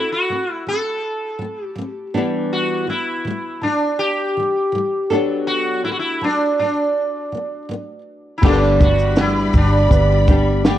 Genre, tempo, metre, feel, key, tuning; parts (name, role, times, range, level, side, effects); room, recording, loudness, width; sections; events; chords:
acoustic pop; 81 BPM; 4/4; straight; G major; A4 = 440 Hz
sitar; melody; 0.0-10.8 s; D4 to A4; -20 LUFS; right 1 dB; ping-pong delay
flamenco guitar; accompaniment; 0.0-10.8 s; G2 to A4; -22 LUFS; left 1 dB; double-tracked left and right
dark upright piano; accompaniment; 8.4-10.8 s; G3 to B4; -26 LUFS; left 7 dB
warm symphonic string section; sustained chords; 8.4-10.8 s; G3 to B5; -26 LUFS; left 2 dB
vintage muted fingered electric bass; bass; 8.4-10.8 s; G1; -17 LUFS; equal
compact cocktail drum kit; drums; 8.4-10.8 s; crash cymbal, kick drum, shaker, snare drum; -16 LUFS; equal
little or no reverb; worn, warbling old tape, cassette tape, warbly pitch drift; -16 LUFS; side -12 dB against mid
0.0-8.4 A section; 8.4-10.8 B section
0.0 D7/F# (rootless); 2.1 Em7; 5.1 Bm7/F#; 8.4 G